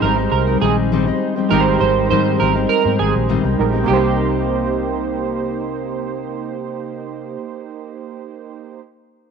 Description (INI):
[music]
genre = indie pop, bedroom pop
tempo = 101 BPM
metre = 4/4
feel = straight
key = C minor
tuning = A4 = 440 Hz
[part]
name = electric guitar at the edge of break-up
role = second line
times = 0.0-5.6 s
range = G4 to C5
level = -21 LUFS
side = right 10 dB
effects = analog chorus, slapback echo
[part]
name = fingerpicked steel-string acoustic guitar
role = accompaniment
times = 0.0-7.5 s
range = Ab2 to Eb4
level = -21 LUFS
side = left 11 dB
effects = wide subtle chorus, vibrato effect
[part]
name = warbly lo-fi synth keys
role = accompaniment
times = 0.0-8.8 s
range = Ab3 to C5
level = -22 LUFS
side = right 10 dB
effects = chorus
[part]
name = vintage muted fingered electric bass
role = bass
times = 0.0-7.1 s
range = Ab1 to Ab2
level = -22 LUFS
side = left 1 dB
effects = none
[sound]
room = moderate plate reverb, RT60 3.1 s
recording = 1960s-style stereo with parts hard left and right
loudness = -16 LUFS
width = side -6 dB against mid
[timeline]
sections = 0.0-3.9 A section; 3.9-6.3 B section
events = none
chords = 0.0 Abmaj7; 3.9 Cm7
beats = 0.32 0.91 | 1.51 2.10 2.70 3.29 | 3.89 4.48 5.08 5.67